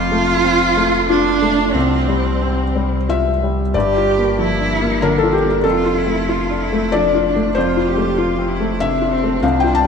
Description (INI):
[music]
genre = neoclassical piano and strings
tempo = 95 BPM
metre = 3/4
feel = rubato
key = G dorian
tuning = A4 = 441 Hz
[part]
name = rich cello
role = second line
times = 0.0-9.9 s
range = C4 to G4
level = -19 LUFS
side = right 4 dB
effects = ping-pong delay
[part]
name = felt-muted upright piano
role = accompaniment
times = 0.0-9.9 s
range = C2 to A5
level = -17 LUFS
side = left 3 dB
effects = lush chorus
[part]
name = punchy sub bass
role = bass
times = 0.0-9.9 s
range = F1 to C2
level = -24 LUFS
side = equal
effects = none
[sound]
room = wet lush hall reverb, RT60 3.1 s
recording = dreamy mix soaked in reverb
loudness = -14 LUFS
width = side -6 dB against mid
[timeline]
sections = 0.0-3.7 A section; 3.7-9.9 B section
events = none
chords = 0.0 F; 1.7 Csus4; 3.7 Gm7; 5.6 Dm/F; 7.6 F